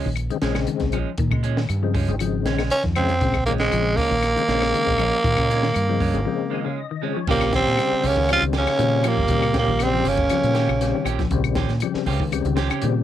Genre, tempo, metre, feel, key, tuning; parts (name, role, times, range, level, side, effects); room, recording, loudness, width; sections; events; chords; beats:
afrobeat; 119 BPM; 4/4; straight; Bb dorian; A4 = 440 Hz
semi-hollow electric guitar; arpeggios; 0.0-13.0 s; Db3 to F3; -30 LUFS; left 8 dB; spring reverb, cassette tape, analog delay
clean electric guitar; stabs; 0.0-12.9 s; F3 to G4; -30 LUFS; right 12 dB; cassette tape
deep dub fingered electric bass; bass; 0.1-13.0 s; G1 to Bb2; -24 LUFS; equal
compact cocktail drum kit; drums; 0.2-12.9 s; crash cymbal, hi-hat, kick drum, snare drum; -28 LUFS; equal
claves; percussion; 0.2-12.8 s; -31 LUFS; left 16 dB
percussive tonewheel organ; accompaniment; 0.3-13.0 s; Db3 to Ab5; -26 LUFS; left 10 dB; slow rotary speaker, overdrive, chorus vibrato, cassette tape
growling tenor saxophone; melody; 2.7-11.1 s; Ab3 to F4; -21 LUFS; right 2 dB; cassette tape
growling tenor saxophone; second line; 7.3-11.1 s; G3 to Db4; -29 LUFS; right 13 dB; cassette tape
warm bass trombone; second line; 7.3-11.1 s; Bb2 to F3; -34 LUFS; left 8 dB
little or no reverb; home recording on cassette; -19 LUFS; side -11 dB against mid
0.0-7.3 A section; 7.3-13.0 B section
break 6.3-7.3; tonewheel organ fill 6.3-7.3
0.0 Bbm7; 7.3 Bbm69
0.17 0.68 | 1.19 1.70 2.21 2.71 | 3.22 3.73 4.24 4.74 | 5.25 5.76 6.26 6.77 | 7.28 7.78 8.29 8.79 | 9.29 9.80 10.30 10.81 | 11.31 11.82 12.32 12.83